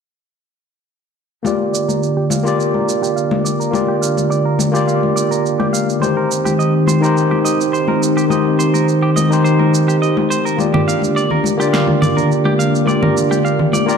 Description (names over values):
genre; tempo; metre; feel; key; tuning
sunset chillout; 105 BPM; 4/4; straight; Bb major; A4 = 439 Hz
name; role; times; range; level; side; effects
overdriven tine electric piano; accompaniment; 1.4-14.0 s; Eb3 to D5; -17 LUFS; moving between left 4 dB and right 5 dB; auto-pan, low-pass filter, digital delay
lush unison pad; sustained chords; 1.4-14.0 s; D3 to G4; -18 LUFS; equal; chorus, vintage 12-bit sampler grit
semi-hollow electric guitar; arpeggios; 1.4-14.0 s; G4 to F5; -23 LUFS; right 3 dB; low-pass filter, digital delay
congas; percussion; 1.4-13.8 s; none; -22 LUFS; left 6 dB; none
electronic shaker, congas and snare drum; drums; 1.5-14.0 s; none; -23 LUFS; right 2 dB; none
room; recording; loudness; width
wet concert hall reverb, RT60 1.9 s; dark, warm production; -13 LUFS; side -6 dB against mid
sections
1.4-14.0 A section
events
filter sweep on analog synth pad 1.4-14.0; filter sweep on clean electric guitar 1.4-14.0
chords
1.4 Bb6; 6.0 Eb6; 10.6 Bb6